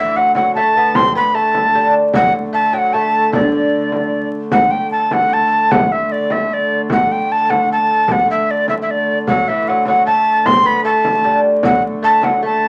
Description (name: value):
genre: medieval dance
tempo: 152 BPM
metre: 3/4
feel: straight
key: D mixolydian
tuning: A4 = 438 Hz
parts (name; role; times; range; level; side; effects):
- breathy mellow tenor recorder; melody; 0.0-12.7 s; D5 to C6; -16 LUFS; equal; none
- lute; second line; 0.0-4.3, 9.3-12.7 s; D3 to C4; -23 LUFS; equal; none
- dark hurdy-gurdy; drone; 0.0-12.7 s; D3 to A3; -26 LUFS; equal; none
- frame drum; percussion; 0.3-12.5 s; none; -23 LUFS; equal; none
room: wet club reverb, RT60 0.5 s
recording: vinyl crackle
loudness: -15 LUFS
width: mono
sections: 0.0-4.5 A section; 4.5-12.7 A section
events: none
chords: none